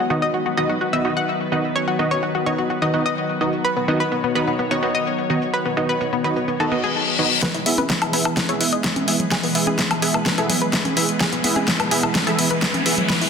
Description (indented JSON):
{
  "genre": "progressive house",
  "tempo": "127 BPM",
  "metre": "4/4",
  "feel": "straight",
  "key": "E major",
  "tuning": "A4 = 440 Hz",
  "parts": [
    { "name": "evolving wavetable pad", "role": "sustained chords", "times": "0.0-13.3 s", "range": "D#3 to C#5", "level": "-26 LUFS", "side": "equal", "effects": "chorus, built-in reverb, sidechain pumping" },
    { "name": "analog pluck", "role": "arpeggios", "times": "0.0-13.3 s", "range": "B3 to F#5", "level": "-24 LUFS", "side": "left 2 dB", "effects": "chorus, sidechain pumping, ping-pong delay" },
    { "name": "supersaw stab", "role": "stabs", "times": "0.1-12.9 s", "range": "D#3 to E5", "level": "-23 LUFS", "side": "right 1 dB", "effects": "cassette tape, sidechain pumping, low-pass filter, ping-pong delay" },
    { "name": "deep house drum kit", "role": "drums", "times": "0.1-13.3 s", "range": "hi-hat, shaker, snare drum, woodblock", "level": "-22 LUFS", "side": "left 1 dB", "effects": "overdrive, low-pass filter on hats, studio reverb, low-pass filter on cymbals, low-pass filter on perc, low-pass filter on snare" },
    { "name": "reverse cymbal and riser", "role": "sound effects", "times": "6.7-13.3 s", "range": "none", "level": "-26 LUFS", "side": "left 4 dB", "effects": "none" },
    { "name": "electronic kick drum", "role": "drums", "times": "7.4-13.2 s", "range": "none", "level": "-31 LUFS", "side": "equal", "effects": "overdrive, high-pass filter on kick, studio reverb" },
    { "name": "congas", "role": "percussion", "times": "7.8-13.1 s", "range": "none", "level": "-29 LUFS", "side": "equal", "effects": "sidechain pumping on perc, studio reverb" }
  ],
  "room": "moderate recital hall reverb, RT60 1.4 s, digital ambience",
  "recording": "dense, heavily limited modern master",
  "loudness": "-18 LUFS",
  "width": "side -6 dB against mid",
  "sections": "0.0-7.4 A section; 7.4-13.3 B section",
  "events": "reverse cymbal 6.7-7.4; build-up 7.4-13.3; drum fill 7.4-13.3; riser 7.4-13.3; filter sweep on supersaw synth 7.4-13.3",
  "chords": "0.0 B/D#; 7.4 E"
}